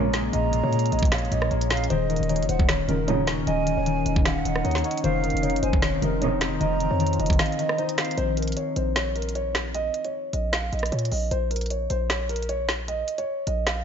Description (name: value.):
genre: hip hop, trap.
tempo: 153 BPM.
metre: 4/4.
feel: half-time.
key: Bb minor.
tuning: A4 = 440 Hz.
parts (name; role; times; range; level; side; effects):
dark concert grand piano; melody; 0.0-13.8 s; Bb4 to F5; -28 LUFS; right 1 dB; low-pass filter.
concert harp; accompaniment; 0.0-11.0 s; Bb2 to Eb4; -28 LUFS; left 6 dB; low-pass filter.
deep dark ambient pad; sustained chords; 0.0-8.1 s; F3 to Bb4; -34 LUFS; right 1 dB; chorus, built-in reverb, tremolo.
muted studio string section; stabs; 0.0-0.2, 2.9-3.4, 6.0-6.5 s; Eb2 to Eb3; -29 LUFS; right 7 dB; none.
hard-hitting 808-style bass; bass; 0.0-13.8 s; Eb1 to Bb2; -28 LUFS; equal; none.
trap drum kit; drums; 0.1-13.8 s; finger snaps, hi-hat, kick drum, rim click, snare drum; -26 LUFS; equal; none.
breathy mellow silver concert flute; second line; 0.3-8.2 s; Db5 to Bb5; -32 LUFS; right 6 dB; ping-pong delay.
room: light reverb, small room ambience.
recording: nothing above 7.6 kHz.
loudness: -22 LUFS.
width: side -8 dB against mid.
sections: 0.0-8.2 A section; 8.2-13.8 B section.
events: kick muted 7.4-8.2.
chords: 0.0 Bbm7; 1.9 Ebm7; 5.0 F7sus4; 8.2 Bbm.